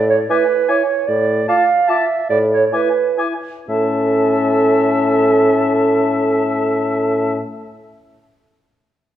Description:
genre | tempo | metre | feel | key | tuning
quick classical-period movement for wind quintet | 117-153 BPM | 3/4 | rubato | A major | A4 = 440 Hz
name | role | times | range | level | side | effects
dark bassoon | bass | 0.0-7.4 s | A2 | -18 LUFS | equal | none
mellow clarinet | accompaniment | 0.1-7.4 s | A4 to F5 | -17 LUFS | right 5 dB | none
hollow concert flute | melody | 0.3-7.4 s | A5 to D6 | -25 LUFS | left 7 dB | none
warm oboe | second line | 0.3-7.4 s | E5 to A5 | -24 LUFS | left 4 dB | none
warm French horn | accompaniment | 0.3-7.4 s | C#4 to F4 | -22 LUFS | left 2 dB | none
room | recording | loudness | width
wet recital hall reverb, RT60 1.6 s | worn, warbling old tape, cassette tape, warbly pitch drift | -13 LUFS | side -11 dB against mid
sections
0.0-3.7 A section; 3.7-6.6 B section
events
slowing down 0.5-3.7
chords
0.0 E/A; 1.1 Dm/A; 2.3 E/A; 3.7 A

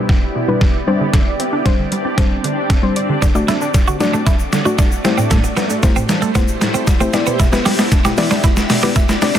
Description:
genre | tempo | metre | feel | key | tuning
dance-pop | 115 BPM | 4/4 | straight | E minor | A4 = 440 Hz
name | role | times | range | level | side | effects
soft round pluck | accompaniment | 0.0-9.4 s | B2 to D5 | -20 LUFS | left 3 dB | chorus, sidechain pumping, low-pass filter
shimmering ambient pad | sustained chords | 0.0-9.4 s | A3 to D5 | -22 LUFS | right 1 dB | chorus, built-in reverb, sidechain pumping, low-pass filter
wide unison pluck | arpeggios | 0.0-9.4 s | A2 to D5 | -24 LUFS | right 2 dB | sidechain pumping, low-pass filter, digital delay
detuned 8-bit digital drum machine | drums | 0.1-9.4 s | hi-hat, kick drum, shaker, snare drum | -15 LUFS | equal | overdrive
twelve-string electric guitar | riff | 3.2-9.4 s | A3 to G4 | -22 LUFS | right 7 dB | wide subtle chorus, low-pass filter
egg shaker | percussion | 3.2-9.4 s | none | -33 LUFS | left 8 dB | none
room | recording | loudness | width
light reverb | dense, heavily limited modern master | -13 LUFS | side -10 dB against mid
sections
0.0-9.4 A section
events
build-up 0.0-9.4; drum fill 0.0-9.4; filter sweep 0.0-9.4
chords
0.0 Em7/B; 0.9 Csus2; 3.2 D; 5.0 Am7; 7.1 Em7/B

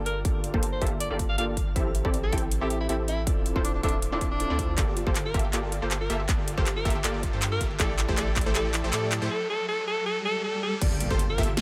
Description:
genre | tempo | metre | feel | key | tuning
future bass | 159 BPM | 4/4 | swing 53% on 16ths, half-time | G dorian | A4 = 440 Hz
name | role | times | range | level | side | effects
felt-muted upright piano | accompaniment | 0.0-4.8 s | Bb3 to A4 | -38 LUFS | equal | sidechain pumping
supersaw stab | riff | 0.0-11.5 s | A3 to G5 | -35 LUFS | equal | sidechain pumping, low-pass filter
saturated sub bass | bass | 0.0-11.6 s | D1 to A2 | -34 LUFS | equal | sidechain pumping
riser, swell and impact | sound effects | 0.0-11.6 s | none | -42 LUFS | equal | none
breathy alto saxophone | melody | 0.1-11.4 s | D4 to F5 | -34 LUFS | equal | sidechain pumping, low-pass filter
big-room dance drum kit | drums | 0.1-11.6 s | crash cymbal, handclaps, hi-hat, snare drum | -35 LUFS | equal | high-pass filter on snare, high-pass filter on toms, high-pass filter on hats, high-pass filter on cymbals, high-pass filter on room
electronic kick drum | drums | 0.2-8.4, 10.8-11.5 s | none | -30 LUFS | equal | none
unison pluck | arpeggios | 4.8-11.6 s | E4 to A4 | -42 LUFS | equal | none
airy dreamy lead | arpeggios | 10.8-11.5 s | C5 to E5 | -41 LUFS | equal | chorus, phaser, sidechain pumping, digital delay
room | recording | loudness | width
light reverb, digital ambience | none | -27 LUFS | mono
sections
0.0-10.8 A section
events
build-up 0.0-10.8; filter sweep on supersaw synth 0.0-10.8; drum fill 4.8-9.3; break 9.3-10.8; swell 10.1-10.8; impact 10.8-11.6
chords
0.0 Gm9; 1.8 Am7; 3.3 Dm9; 4.8 Gm9; 7.8 Am7; 9.3 N.C.; 10.8 Gm9

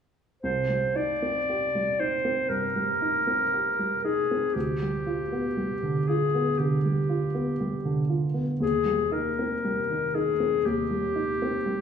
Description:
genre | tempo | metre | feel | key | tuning
classical, romantic duo for clarinet and grand piano | 59 BPM | 4/4 | rubato | C minor | A4 = 440 Hz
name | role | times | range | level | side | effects
bright clarinet | melody | 0.4-11.8 s | G4 to D5 | -26 LUFS | left 2 dB | none
warm baby grand piano | accompaniment | 0.4-11.8 s | C2 to G4 | -28 LUFS | right 2 dB | none
room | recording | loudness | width
moderate scoring stage reverb, RT60 1.5 s | small room ambience | -24 LUFS | side -7 dB against mid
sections
0.4-11.8 A section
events
none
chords
0.4 Cm; 4.6 G7/D; 8.6 Cm/Eb

